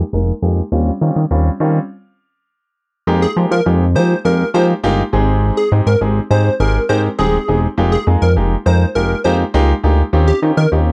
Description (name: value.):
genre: dance-pop.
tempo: 102 BPM.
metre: 4/4.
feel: straight.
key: F minor.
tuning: A4 = 442 Hz.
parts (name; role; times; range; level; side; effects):
chorused synth bass; bass; 0.0-10.9 s; Eb1 to F3; -16 LUFS; equal; none.
clear baby grand piano; accompaniment; 0.1-10.9 s; G3 to Bb4; -21 LUFS; equal; none.
plucky unison lead; melody; 3.2-10.7 s; G4 to C5; -21 LUFS; equal; slapback echo.
room: little or no reverb.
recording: dry, close 1970s-style studio recording, low-pass filter.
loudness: -15 LUFS.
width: mono.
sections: 0.0-3.1 A section; 3.1-10.9 B section.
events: stop 1.9-3.1.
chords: 0.0 Fm11; 0.7 Eb13; 3.1 Fm11; 5.1 Abmaj7; 7.8 Fm11; 10.1 Eb13.